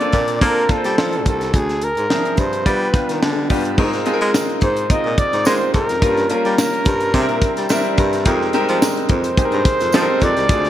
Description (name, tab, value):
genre	polished 1980s jazz-funk pop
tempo	107 BPM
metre	4/4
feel	swing 54% on 16ths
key	unclear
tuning	A4 = 439 Hz
part	breathy flugelhorn	melody	0.0-10.7 s	Ab4 to Eb5	-20 LUFS	equal	none
part	clear grand piano	accompaniment	0.0-10.7 s	F3 to C5	-20 LUFS	left 1 dB	wide subtle chorus
part	tight funk drum kit	drums	0.0-10.7 s	crash cymbal, hi-hat, kick drum, snare drum	-19 LUFS	equal	gated reverb
part	warm baritone saxophone	bass	0.1-10.7 s	C2 to Bb3	-21 LUFS	equal	none
part	tambourine	percussion	4.3-10.1 s	none	-31 LUFS	right 6 dB	none
room	light reverb, small room ambience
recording	bright 1980s-style digital production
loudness	-15 LUFS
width	side -12 dB against mid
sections	0.0-3.8 A section; 3.8-10.7 B section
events	none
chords	0.0 Bbmaj7; 1.5 Dm7b5; 2.7 G7; 3.8 Ab6; 6.0 Gm7b5; 7.1 C7; 8.3 Fm11